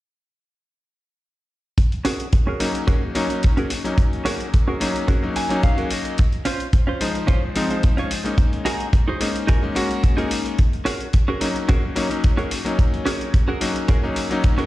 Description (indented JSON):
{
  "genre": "nu-disco, nu disco",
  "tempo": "109 BPM",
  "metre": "4/4",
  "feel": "swing 53% on 16ths",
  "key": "Ab mixolydian",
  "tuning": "A4 = 440 Hz",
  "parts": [
    { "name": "electronic hi-hat", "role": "drums", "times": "1.8-14.7 s", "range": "none", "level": "-31 LUFS", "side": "left 1 dB", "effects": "overdrive" },
    { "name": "kick drum", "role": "drums", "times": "1.8-14.6 s", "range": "none", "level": "-17 LUFS", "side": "equal", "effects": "none" },
    { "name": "direct-recorded clean electric guitar", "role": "riff", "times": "2.0-14.7 s", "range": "Db4 to Ab5", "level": "-26 LUFS", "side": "right 2 dB", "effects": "wide subtle chorus, low-pass filter, digital delay" },
    { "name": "bright electric grand piano", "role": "accompaniment", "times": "2.6-14.7 s", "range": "F3 to C5", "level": "-24 LUFS", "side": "left 2 dB", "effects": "sidechain pumping, digital delay" }
  ],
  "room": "light reverb, small room reverb",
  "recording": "played on a big sound system in a bare room, stone room reverb",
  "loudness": "-18 LUFS",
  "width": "side -16 dB against mid",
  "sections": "1.8-14.7 A section",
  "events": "clean electric guitar fill 5.1-6.2",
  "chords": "1.8 Ab9sus4; 6.2 Dbmaj7; 8.4 Gb69; 10.6 Ab9sus4",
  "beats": "| 1.78 2.33 2.88 3.43 | 3.98 4.53 5.08 5.63 | 6.18 6.73 7.28 7.83 | 8.38 8.94 9.48 10.04 | 10.59 11.14 11.69 12.24 | 12.79 13.34 13.89 14.44"
}